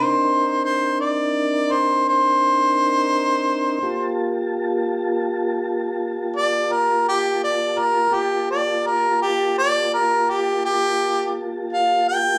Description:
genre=blues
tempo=56 BPM (dotted quarters)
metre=12/8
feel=straight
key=G minor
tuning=A4 = 444 Hz
part: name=warm harmonica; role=melody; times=0.0-12.4 s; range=G4 to G5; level=-21 LUFS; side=equal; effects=overdrive
part: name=mellow tonewheel organ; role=sustained chords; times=0.0-12.4 s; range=Bb3 to A5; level=-26 LUFS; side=equal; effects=slow rotary speaker, chorus vibrato
room=moderate large studio reverb, RT60 0.9 s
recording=band playing live in one room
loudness=-20 LUFS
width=mono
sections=0.0-12.4 A section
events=harmonica solo 0.0-12.4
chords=0.0 Cm9; 3.8 Gm9

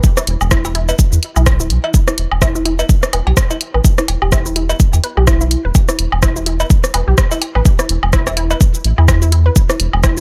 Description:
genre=minimal techno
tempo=126 BPM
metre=4/4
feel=swing 57% on 16ths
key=E minor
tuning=A4 = 439 Hz
part: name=electronic kick drum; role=drums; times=0.0-10.1 s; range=none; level=-14 LUFS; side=equal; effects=none
part: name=house drum kit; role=drums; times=0.0-10.2 s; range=hi-hat, rim click, shaker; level=-22 LUFS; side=equal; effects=none
part: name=resonant blip pluck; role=riff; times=0.2-10.2 s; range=E4 to B4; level=-25 LUFS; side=equal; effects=chorus, sidechain pumping, digital delay
part: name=electronic rim click, woodblock and cowbell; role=percussion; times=0.2-10.1 s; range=none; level=-22 LUFS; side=equal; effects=none
part: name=round analog bass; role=bass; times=0.3-10.2 s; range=D1 to E2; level=-17 LUFS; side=equal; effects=sidechain pumping
part: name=thumb-piano-like synth pluck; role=melody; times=4.2-5.5 s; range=E4 to G4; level=-28 LUFS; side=equal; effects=chorus, digital delay
room=digital ambience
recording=none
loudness=-14 LUFS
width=mono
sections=0.0-10.2 A section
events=none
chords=0.0 E5

